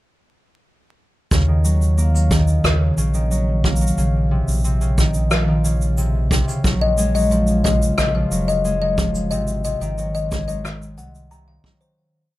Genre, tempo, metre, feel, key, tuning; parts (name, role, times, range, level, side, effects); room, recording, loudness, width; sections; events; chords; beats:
folktronica; 90 BPM; 4/4; straight; Eb dorian; A4 = 440 Hz
concert harp; arpeggios; 1.3-12.0 s; C3 to Bb3; -21 LUFS; equal; low-pass filter, ping-pong delay
warm sub bass; bass; 1.3-11.6 s; F1 to Eb2; -20 LUFS; equal
kick drum; drums; 1.3-11.8 s; -21 LUFS; equal
shaker and rim click; drums; 1.3-11.9 s; -26 LUFS; equal
music box; second line; 6.8-12.0 s; C5 to Bb5; -23 LUFS; left 5 dB; ping-pong delay
light reverb; vinyl crackle; -16 LUFS; side -16 dB against mid
1.3-12.0 groove
fade-out 8.4-12.0
1.3 Ebm7; 4.0 Bbmadd9; 6.6 Gbmaj9/Bb; 9.3 Ab7
| 1.31 1.98 2.64 3.31 | 3.98 4.64 5.31 5.98 | 6.64 7.31 7.98 8.64 | 9.31 9.98 10.64 11.31